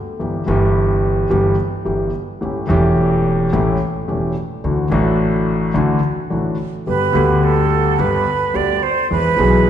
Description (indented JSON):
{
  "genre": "tango",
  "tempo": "108 BPM",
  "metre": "4/4",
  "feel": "rubato",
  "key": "G major",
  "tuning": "A4 = 440 Hz",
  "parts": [
    { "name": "dark concert grand piano", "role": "accompaniment", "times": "0.2-9.7 s", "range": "E1 to G#4", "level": "-16 LUFS", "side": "left 1 dB", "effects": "none" },
    { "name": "upright bass", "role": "bass", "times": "0.2-9.7 s", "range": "E1 to E2", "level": "-23 LUFS", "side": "right 2 dB", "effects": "none" },
    { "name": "breathy bright silver concert flute", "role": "second line", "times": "6.9-9.7 s", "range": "A4 to D5", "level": "-17 LUFS", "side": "right 6 dB", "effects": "none" }
  ],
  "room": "wet recital hall reverb, RT60 1.8 s",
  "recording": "recorded in a church or concert hall, nothing above 10.8 kHz",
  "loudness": "-15 LUFS",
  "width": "side -10 dB against mid",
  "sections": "0.0-9.7 A section",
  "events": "none",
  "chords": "0.2 Em/G; 2.4 A7; 4.6 Dadd9; 6.9 G; 9.1 E",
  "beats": "| 0.20 0.76 1.31 1.87 | 2.42 2.98 3.53 4.09 | 4.64 5.20 5.75 6.31 | 6.87 7.43 7.99 8.55 | 9.10 9.66"
}